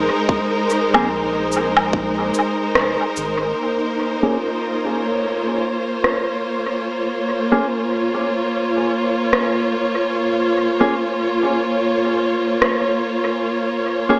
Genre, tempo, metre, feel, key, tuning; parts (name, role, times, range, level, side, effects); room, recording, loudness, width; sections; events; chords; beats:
ambient dub; 73 BPM; 4/4; swing 59% on 16ths; Bb minor; A4 = 440 Hz
warm symphonic string section; sustained chords; 0.0-14.2 s; Ab3 to Db5; -18 LUFS; equal
soft dub sub bass; bass; 0.0-3.5 s; F1 to Bb1; -30 LUFS; equal
electronic kick drum; drums; 0.3-2.1 s; -21 LUFS; equal
electronic cabasa, woodblock and rim click; drums; 0.7-12.8 s; -20 LUFS; equal; low-pass filter on snare, low-pass filter on perc, low-pass filter on room, dub echo
mellow electric guitar; stabs; 0.9-14.2 s; Bb3 to Ab4; -21 LUFS; equal; low-pass filter, dub echo
moderate plate reverb, RT60 3.0 s; echo-heavy mix, small speaker sound; -17 LUFS; side -32 dB against mid
0.0-3.6 A section; 3.6-14.2 B section
filter sweep on clean electric guitar 3.6-14.2
0.0 Abadd9; 3.6 Bbm
| 0.29 1.11 1.93 2.75 | 3.58 4.40 5.22 6.04 | 6.86 7.68 8.51 9.33 | 10.15 10.97 11.79 12.62 | 13.44